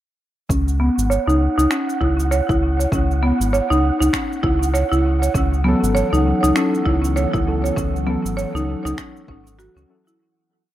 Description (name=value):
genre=organic downtempo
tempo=99 BPM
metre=4/4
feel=swing 59% on 16ths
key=C# minor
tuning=A4 = 440 Hz
part: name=buzzing marimba with medium hard mallets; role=arpeggios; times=0.5-10.2 s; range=B3 to C#5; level=-20 LUFS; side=right 1 dB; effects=low-pass filter, dub echo
part: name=round analog bass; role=bass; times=0.5-9.9 s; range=G#1 to C#2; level=-20 LUFS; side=equal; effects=none
part: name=electronic kick drum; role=drums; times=0.5-9.4 s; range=none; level=-24 LUFS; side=equal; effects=none
part: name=electronic shaker and finger snaps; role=drums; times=0.5-10.2 s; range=none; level=-30 LUFS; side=right 2 dB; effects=analog delay
part: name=wind-like tuned noise texture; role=texture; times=0.8-10.2 s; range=F#5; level=-30 LUFS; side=right 5 dB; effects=built-in reverb
part: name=warbly tape-like pad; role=sustained chords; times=6.0-10.2 s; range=E3 to A4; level=-29 LUFS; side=left 1 dB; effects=chorus, built-in reverb, sidechain pumping
part: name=muted felt-like synth keys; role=accompaniment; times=5.6-10.2 s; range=E3 to A4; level=-24 LUFS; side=left 2 dB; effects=chorus, sidechain pumping, analog delay
room=moderate spring reverb, RT60 1.7 s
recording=echo-heavy mix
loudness=-16 LUFS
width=side -13 dB against mid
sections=0.5-10.2 groove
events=filter sweep on marimba 0.5-10.2; fade-out 7.0-10.2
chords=0.5 C#madd9; 5.3 F#m7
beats=| 0.50 1.10 1.71 2.31 | 2.92 3.53 4.13 4.74 | 5.34 5.95 6.56 7.16 | 7.77 8.38 8.98 9.59